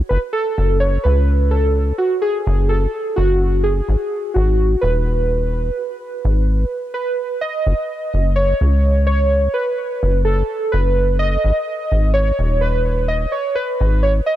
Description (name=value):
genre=IDM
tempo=127 BPM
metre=4/4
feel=straight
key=unclear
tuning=A4 = 442 Hz
part: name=warbly lo-fi synth keys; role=melody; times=0.1-14.4 s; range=F#4 to D#5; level=-19 LUFS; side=right 2 dB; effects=chorus, vintage 12-bit sampler grit, ping-pong delay
part: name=deep acid bass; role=bass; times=0.1-14.2 s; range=D#1 to C#2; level=-16 LUFS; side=equal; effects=none
room=digital ambience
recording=none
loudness=-16 LUFS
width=side -13 dB against mid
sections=0.0-14.4 A section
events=break 6.7-7.7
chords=0.1 F#m; 3.9 G#m; 7.7 F#5; 11.4 G#m